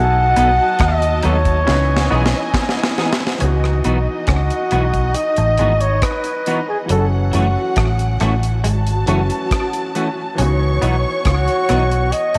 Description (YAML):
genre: lovers rock reggae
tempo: 69 BPM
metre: 4/4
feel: straight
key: C# minor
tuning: A4 = 441 Hz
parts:
  - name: breathy flugelhorn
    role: melody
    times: 0.0-12.4 s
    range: F#4 to F#5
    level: -21 LUFS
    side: equal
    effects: tape echo
  - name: warm studio string section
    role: second line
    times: 0.0-12.4 s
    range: D#4 to C#6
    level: -27 LUFS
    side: equal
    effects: none
  - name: clear grand piano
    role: accompaniment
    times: 0.0-12.4 s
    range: E3 to B4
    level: -29 LUFS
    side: equal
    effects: slapback echo
  - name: twangy electric guitar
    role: riff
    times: 0.0-12.4 s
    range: F#3 to D#4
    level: -30 LUFS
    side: equal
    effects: none
  - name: vintage muted fingered electric bass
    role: bass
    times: 0.0-12.4 s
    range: F#1 to D#2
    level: -20 LUFS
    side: equal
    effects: none
  - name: clean electric guitar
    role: stabs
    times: 0.4-11.8 s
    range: E3 to A4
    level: -27 LUFS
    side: equal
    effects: analog chorus
  - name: deep reggae drum kit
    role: drums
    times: 0.4-12.4 s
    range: hi-hat, kick drum, rim click, snare drum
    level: -24 LUFS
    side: equal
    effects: slapback echo
room: moderate echo chamber reverb, RT60 2.4 s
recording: none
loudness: -17 LUFS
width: mono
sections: 0.0-3.4 A section; 3.4-12.4 B section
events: drum fill 1.7-3.4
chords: 0.0 B7; 1.7 C#m9; 3.4 C#m11; 6.9 F#m7; 10.4 C#m11